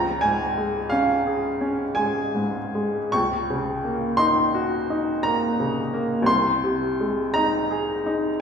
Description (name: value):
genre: classical, romantic nocturne for solo piano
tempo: 57 BPM (dotted quarters)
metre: 9/8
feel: rubato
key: Db major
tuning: A4 = 440 Hz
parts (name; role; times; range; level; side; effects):
- clear upright piano; solo; 0.0-8.4 s; C2 to Db6; -21 LUFS; equal; none
room: wet recital hall reverb, RT60 1.4 s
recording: recorded in a church or concert hall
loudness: -21 LUFS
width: side -6 dB against mid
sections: 0.0-8.4 A section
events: none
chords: 0.0 Db; 3.1 Ebm7/Db; 6.3 Ab/C